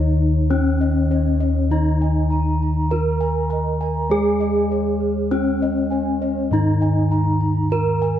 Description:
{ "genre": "Javanese gamelan", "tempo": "50 BPM", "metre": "4/4", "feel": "straight", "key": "unclear", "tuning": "A4 = 439 Hz", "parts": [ { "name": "gamelan-type bronze metallophone", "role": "melody", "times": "0.0-8.2 s", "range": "Db4-40c to Bb4+20c", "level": "-22 LUFS", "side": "equal", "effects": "none" }, { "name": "gamelan-type bronze metallophone", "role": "accompaniment", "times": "0.0-8.2 s", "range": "Eb3 to Ab3-20c", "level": "-24 LUFS", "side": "right 2 dB", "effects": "none" }, { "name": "gamelan-type bossed gongs", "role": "arpeggios", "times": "0.0-8.2 s", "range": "Db5-40c to Bb5+20c", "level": "-31 LUFS", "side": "left 5 dB", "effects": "none" }, { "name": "gamelan-type bronze metallophone", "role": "arpeggios", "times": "0.0-8.2 s", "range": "Db5-40c to Bb5+20c", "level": "-30 LUFS", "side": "right 3 dB", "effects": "none" }, { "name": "gamelan-type bossed gongs", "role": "bass", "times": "0.0-8.2 s", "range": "Eb2 to Ab4-20c", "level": "-21 LUFS", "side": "left 2 dB", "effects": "none" } ], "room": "light reverb", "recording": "dark, warm production", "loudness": "-17 LUFS", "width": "side -10 dB against mid", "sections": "0.0-8.2 A section", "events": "none", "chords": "none" }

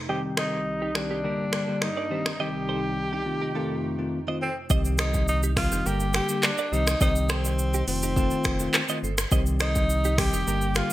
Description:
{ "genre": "afrobeats", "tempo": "104 BPM", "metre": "4/4", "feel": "straight", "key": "unclear", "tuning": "A4 = 440 Hz", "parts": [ { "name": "hollow soft pad", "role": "sustained chords", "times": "0.0-4.7 s", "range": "C2 to Eb4", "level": "-36 LUFS", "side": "right 2 dB", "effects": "chorus, low-pass filter" }, { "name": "breathy tenor saxophone", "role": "melody", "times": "0.1-10.9 s", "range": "C4 to G4", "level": "-29 LUFS", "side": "equal", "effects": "low-pass filter, digital delay" }, { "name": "bell-like tine electric piano", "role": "accompaniment", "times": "0.1-10.9 s", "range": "D3 to G4", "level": "-29 LUFS", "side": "left 2 dB", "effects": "wide subtle chorus, low-pass filter" }, { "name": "direct-recorded clean electric guitar", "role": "riff", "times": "0.1-10.7 s", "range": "Eb4 to Eb5", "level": "-34 LUFS", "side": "right 6 dB", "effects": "analog chorus, low-pass filter" }, { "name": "afro-pop drum kit", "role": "drums", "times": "0.4-10.9 s", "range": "finger snaps, handclaps, hi-hat, kick drum, rim click, shaker", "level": "-26 LUFS", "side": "equal", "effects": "overdrive, gated reverb" }, { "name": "sub bass with octave", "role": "bass", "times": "4.7-10.8 s", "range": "F1 to C2", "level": "-27 LUFS", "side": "equal", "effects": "none" } ], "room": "light reverb, digital ambience", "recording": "bright 1980s-style digital production", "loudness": "-23 LUFS", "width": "side -15 dB against mid", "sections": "0.0-4.7 A section; 4.7-10.9 B section", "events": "none", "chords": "0.1 Cm; 1.2 Gm; 2.1 Cm; 3.3 F7; 5.9 Gm; 6.7 Cm; 7.9 F7" }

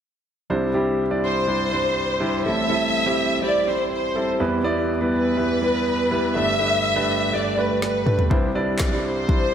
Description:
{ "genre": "piano-driven pop", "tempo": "123 BPM", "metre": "4/4", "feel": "straight", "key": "C major", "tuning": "A4 = 441 Hz", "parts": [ { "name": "clear concert grand piano", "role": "accompaniment", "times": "0.5-9.5 s", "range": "G1 to D5", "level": "-22 LUFS", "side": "right 1 dB", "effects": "none" }, { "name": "warm studio violin section", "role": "melody", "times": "1.2-9.5 s", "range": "B4 to E5", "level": "-22 LUFS", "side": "left 1 dB", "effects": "slapback echo" }, { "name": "deep house drum kit", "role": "drums", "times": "7.8-9.4 s", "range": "handclaps, kick drum, snare drum, toms", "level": "-21 LUFS", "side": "equal", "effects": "none" } ], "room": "wet lush hall reverb, RT60 1.9 s, studio reverb", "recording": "big arena sound", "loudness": "-19 LUFS", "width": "side -8 dB against mid", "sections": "0.5-9.5 A section", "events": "drum fill 7.8-8.3", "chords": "0.5 Cadd9; 2.4 Am7; 4.4 Em; 6.4 Gadd9; 8.3 Cadd9" }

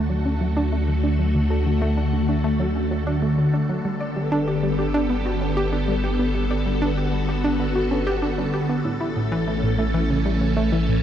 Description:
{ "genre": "ambient, sequencer-driven space music", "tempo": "96 BPM", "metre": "4/4", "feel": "straight", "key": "D major", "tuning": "A4 = 442 Hz", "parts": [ { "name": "phased string machine", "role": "sustained chords", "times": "0.0-11.0 s", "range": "D3 to A4", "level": "-23 LUFS", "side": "equal", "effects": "ensemble chorus, phaser, shimmer reverb" }, { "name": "analog pluck", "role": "riff", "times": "0.0-11.0 s", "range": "A2 to D5", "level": "-25 LUFS", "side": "equal", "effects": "chorus, shimmer reverb, tape echo" }, { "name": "round analog bass", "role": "bass", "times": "0.0-11.0 s", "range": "G1 to D2", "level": "-25 LUFS", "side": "equal", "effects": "none" } ], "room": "wet huge ambient reverb, RT60 7.8 s", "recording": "dark, warm production", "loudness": "-20 LUFS", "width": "side -10 dB against mid", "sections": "0.0-11.0 A section", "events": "none", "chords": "0.0 D; 3.8 Gadd9; 8.8 A" }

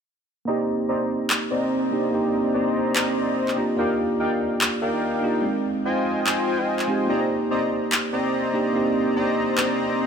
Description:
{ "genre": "future bass", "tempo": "145 BPM", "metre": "4/4", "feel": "swing 54% on 16ths, half-time", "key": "C minor", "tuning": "A4 = 441 Hz", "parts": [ { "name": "bell-like tine electric piano", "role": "accompaniment", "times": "0.5-10.1 s", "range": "Ab3 to D5", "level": "-24 LUFS", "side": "right 2 dB", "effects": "vintage 12-bit sampler grit, low-pass filter, ping-pong delay" }, { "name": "soft supersaw", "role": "riff", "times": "0.5-10.1 s", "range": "C4 to Bb5", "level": "-24 LUFS", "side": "left 1 dB", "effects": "low-pass filter, ping-pong delay" }, { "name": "electronic handclaps", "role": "drums", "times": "1.3-9.7 s", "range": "none", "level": "-26 LUFS", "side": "equal", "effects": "none" } ], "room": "light reverb, digital ambience", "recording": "none", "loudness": "-20 LUFS", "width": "side -7 dB against mid", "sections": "0.5-10.1 A section", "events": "filter sweep on supersaw synth 0.5-10.1; filter sweep on tine electric piano 0.5-10.1", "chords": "0.5 Cm7; 3.6 Ebmaj7; 5.4 Fm7; 7.1 Cm7" }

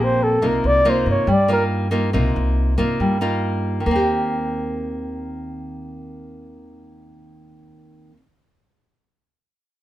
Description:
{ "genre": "bossa nova", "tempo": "140 BPM", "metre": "4/4", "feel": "straight", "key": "Eb major", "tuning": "A4 = 440 Hz", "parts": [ { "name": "breathy flugelhorn", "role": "melody", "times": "0.0-1.6 s", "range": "A4 to D5", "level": "-18 LUFS", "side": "equal", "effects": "none" }, { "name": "nylon-string guitar", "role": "accompaniment", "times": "0.0-8.3 s", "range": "Bb2 to G4", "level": "-21 LUFS", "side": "equal", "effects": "none" }, { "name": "upright bass", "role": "bass", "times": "0.0-8.1 s", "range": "Bb1 to G2", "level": "-24 LUFS", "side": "equal", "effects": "none" } ], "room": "light reverb", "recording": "minimal, uncompressed stereo recording", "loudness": "-17 LUFS", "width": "side -14 dB against mid", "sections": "0.0-3.9 A section; 3.9-7.3 B section", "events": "flugelhorn solo 0.0-3.9", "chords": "0.4 Cm7; 3.9 Eb6" }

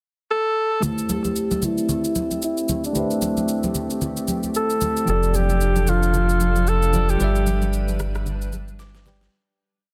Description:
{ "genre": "amapiano", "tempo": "113 BPM", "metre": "4/4", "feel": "swing 58% on 16ths", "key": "A minor", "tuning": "A4 = 440 Hz", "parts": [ { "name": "breathy alto saxophone", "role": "melody", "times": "0.3-7.9 s", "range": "D4 to A4", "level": "-26 LUFS", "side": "equal", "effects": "low-pass filter, delay" }, { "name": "bell-like tine electric piano", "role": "accompaniment", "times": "0.8-9.3 s", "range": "F3 to D6", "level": "-29 LUFS", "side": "equal", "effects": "subtle chorus, low-pass filter" }, { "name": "glassy FM pad", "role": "sustained chords", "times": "1.8-9.3 s", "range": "F3 to B4", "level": "-32 LUFS", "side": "equal", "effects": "ensemble chorus, built-in reverb, low-pass filter" }, { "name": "electronic shaker, rim click and snare drum", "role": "drums", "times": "0.8-9.3 s", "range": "none", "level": "-34 LUFS", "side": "equal", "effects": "none" }, { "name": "congas", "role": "percussion", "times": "0.8-9.2 s", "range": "none", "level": "-31 LUFS", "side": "equal", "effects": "none" }, { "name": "sub bass with octave", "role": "bass", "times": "5.1-9.3 s", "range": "F1 to G1", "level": "-24 LUFS", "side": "equal", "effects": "none" } ], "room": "little or no reverb", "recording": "dense, heavily limited modern master", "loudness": "-22 LUFS", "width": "mono", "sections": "0.0-0.8 pickup bar; 0.8-9.3 breakdown", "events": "filter sweep 0.8-9.3; fade-out 7.2-9.3; tine electric piano fill 8.5-9.3; drum fill 8.8-9.3", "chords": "0.0 N.C.; 0.8 Am11; 5.1 F6; 7.2 Em7/G" }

